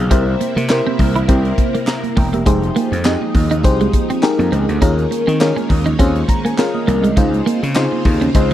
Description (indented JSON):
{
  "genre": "early-eighties boogie funk",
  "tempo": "102 BPM",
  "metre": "4/4",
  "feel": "swing 56% on 16ths",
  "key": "F minor",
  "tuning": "A4 = 440 Hz",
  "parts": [
    { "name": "FM electric piano with soft pad layer", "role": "accompaniment", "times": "0.0-8.5 s", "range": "Db4 to Bb5", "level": "-20 LUFS", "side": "left 2 dB", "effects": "chorus, phaser" },
    { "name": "string machine, violins", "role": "sustained chords", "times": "0.0-8.5 s", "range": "C3 to F4", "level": "-25 LUFS", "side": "equal", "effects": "ensemble chorus" },
    { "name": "gritty slap bass", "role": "bass", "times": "0.0-8.5 s", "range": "E1 to Eb3", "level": "-17 LUFS", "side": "equal", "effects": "overdrive" },
    { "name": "clean electric guitar", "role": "riff", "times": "0.1-8.5 s", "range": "Ab3 to E4", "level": "-20 LUFS", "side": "right 3 dB", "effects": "analog chorus" },
    { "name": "tight funk drum kit", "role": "drums", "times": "0.1-8.5 s", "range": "handclaps, hi-hat, kick drum, snare drum", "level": "-17 LUFS", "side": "equal", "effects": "none" },
    { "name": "congas", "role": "percussion", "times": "0.4-8.5 s", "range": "none", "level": "-26 LUFS", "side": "right 12 dB", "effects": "none" }
  ],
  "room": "small room ambience",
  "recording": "dry, close 1970s-style studio recording",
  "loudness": "-13 LUFS",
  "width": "side -12 dB against mid",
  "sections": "0.0-8.5 A section",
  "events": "FM electric piano fill 6.0-7.2",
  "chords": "0.1 C7; 2.5 Fm7; 4.8 Eb7sus4; 7.2 Dbmaj7"
}